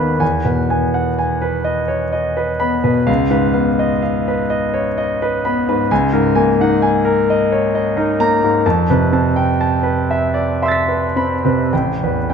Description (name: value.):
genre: classical, impressionist solo piano.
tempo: 52-66 BPM.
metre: 3/4.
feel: rubato.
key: unclear.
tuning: A4 = 436 Hz.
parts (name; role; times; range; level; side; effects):
clear concert grand piano; solo; 0.0-12.3 s; G#1 to B6; -14 LUFS; equal; none.
room: wet recital hall reverb, RT60 1.7 s.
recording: nothing above 10.7 kHz.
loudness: -14 LUFS.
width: side -6 dB against mid.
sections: 0.0-12.3 A section.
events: none.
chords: 0.2 Emaj7; 3.1 C#9; 5.9 A#m7/C#; 8.6 Fmaj7#11; 11.7 A7sus2.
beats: | 0.21 1.17 2.13 | 3.08 4.01 4.97 | 5.91 6.82 7.74 | 8.65 9.58 10.60 | 11.72.